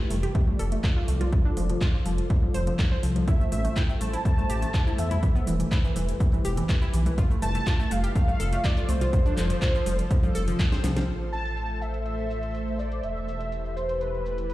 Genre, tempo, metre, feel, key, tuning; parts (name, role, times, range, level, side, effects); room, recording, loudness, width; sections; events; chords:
progressive house; 123 BPM; 4/4; straight; A minor; A4 = 440 Hz
shimmering ambient pad; sustained chords; 0.0-14.5 s; E3 to E5; -35 LUFS; equal; chorus, built-in reverb, sidechain pumping
analog pluck; arpeggios; 0.0-11.0 s; E3 to C5; -32 LUFS; equal; chorus, sidechain pumping, dub echo
dark detuned saw bass; bass; 0.1-14.5 s; E1 to E2; -28 LUFS; equal; sidechain pumping
house drum kit; drums; 0.1-14.5 s; handclaps, hi-hat, shaker, snare drum; -36 LUFS; equal; low-pass filter on hats, small room ambience, low-pass filter on snare, low-pass filter on perc
congas; percussion; 0.1-11.1 s; -36 LUFS; right 1 dB; sidechain pumping on perc
electronic kick drum; drums; 0.3-10.7 s; -22 LUFS; equal; small room ambience
wide unison lead; melody; 3.3-14.5 s; B4 to A5; -32 LUFS; equal; ensemble chorus, dub echo
light reverb; played on a big sound system in a bare room, large studio reverb; -23 LUFS; side -16 dB against mid
0.0-11.1 A section; 11.1-14.5 B section
filter sweep on synth arpeggio sound 0.0-11.1; filter sweep on ambient pad 0.0-11.1; drum fill 10.7-11.1
0.0 Dm/F; 1.3 F; 3.3 Am; 5.2 Em; 7.2 Dm/F; 9.1 F; 11.1 Am; 13.0 Em